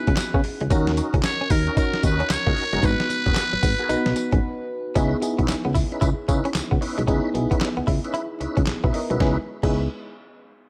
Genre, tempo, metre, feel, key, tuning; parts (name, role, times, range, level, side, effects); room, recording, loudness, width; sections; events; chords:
R&B, new jack swing; 113 BPM; 4/4; swing 63% on 16ths; C# dorian; A4 = 440 Hz
trumpet with metal mute; melody; 0.0-4.4 s; A#4 to C#5; -28 LUFS; equal
FM electric piano; accompaniment; 0.0-9.9 s; B3 to E5; -30 LUFS; equal; chorus
direct-recorded clean electric guitar; riff; 0.1-9.8 s; F#3 to E4; -34 LUFS; equal; lush chorus
solid FM bass; bass; 0.1-9.9 s; F#1 to C#3; -27 LUFS; equal
boom bap sampler-style drum kit; drums; 0.1-9.7 s; crash cymbal, handclaps, hi-hat, kick drum, snare drum, tambourine; -26 LUFS; equal
tonewheel organ; stabs; 0.7-9.8 s; B3 to B4; -34 LUFS; equal; overdrive, chorus vibrato, slow rotary speaker
light reverb; -22 LUFS; mono
0.0-5.0 A section; 5.0-9.2 B section; 9.2-10.7 C section
break 4.4-5.0
0.0 C#m9; 0.7 D#m7; 2.8 G#m9; 5.0 C#m9